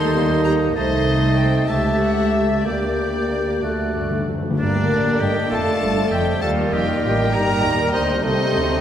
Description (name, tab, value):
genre	quick classical-period movement for symphony orchestra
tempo	61-68 BPM (dotted quarters)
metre	6/8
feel	rubato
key	G minor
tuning	A4 = 440 Hz
part	warm chamber violin section	melody	0.0-8.8 s	D5 to C6	-28 LUFS	left 2 dB	none
part	clear oboe	second line	0.0-8.8 s	D4 to E5	-28 LUFS	right 1 dB	none
part	silver concert flute	second line	0.0-8.8 s	Bb4 to A6	-29 LUFS	left 1 dB	none
part	warm chamber violin section	second line	0.0-8.8 s	D4 to E5	-28 LUFS	left 2 dB	none
part	warm clarinet	second line	0.0-8.8 s	Eb4 to D5	-29 LUFS	left 2 dB	none
part	mellow bassoon	accompaniment	0.0-8.8 s	G3 to Bb3	-26 LUFS	right 1 dB	none
part	mellow French horn section	sustained chords	0.0-8.8 s	G3 to A4	-26 LUFS	left 3 dB	none
part	dark chamber cello section	bass	0.0-8.8 s	C2 to A2	-26 LUFS	right 2 dB	none
part	warm chamber double bass section	bass	0.0-8.8 s	F1 to Eb2	-25 LUFS	right 2 dB	none
part	dark symphonic viola section	accompaniment	0.2-8.8 s	D3 to A4	-26 LUFS	right 1 dB	none
part	timpani	percussion	3.6-4.6 s	D3	-26 LUFS	left 1 dB	none
room	wet concert hall reverb, RT60 2.0 s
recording	none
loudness	-17 LUFS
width	side -10 dB against mid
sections	0.0-4.6 A section; 4.6-8.8 B section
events	timpani fill 3.6-4.6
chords	0.0 Eb; 0.8 Adim/C; 1.7 A7/C#; 2.6 Gm/D; 3.6 D; 4.6 Gm; 5.5 Dm/F; 6.4 Eb; 8.2 Adim/C